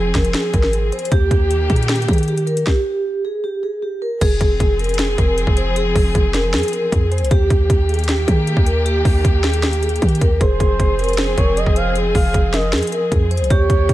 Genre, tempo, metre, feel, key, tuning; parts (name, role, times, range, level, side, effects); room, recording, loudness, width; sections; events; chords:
hip hop, trap; 155 BPM; 4/4; half-time; F minor; A4 = 441 Hz
vibraphone with soft mallets; melody; 0.0-13.9 s; G4 to C5; -20 LUFS; right 1 dB
dark chamber string section; sustained chords; 0.0-13.9 s; Eb3 to Ab4; -26 LUFS; left 2 dB
warm 808-style bass; bass; 0.0-13.9 s; F1 to Eb3; -19 LUFS; equal
trap drum kit; drums; 0.1-13.9 s; crash cymbal, hi-hat, kick drum, snare drum; -18 LUFS; equal; vintage 12-bit sampler grit
gliding portamento lead; second line; 10.4-13.9 s; C5 to F5; -24 LUFS; right 3 dB; chorus, ping-pong delay
digital ambience; -14 LUFS; side -15 dB against mid
0.0-4.2 A section; 4.2-13.9 B section
stop 2.7-4.2
0.0 Fm; 1.1 Eb; 4.2 Fm; 7.3 Eb; 10.4 Fm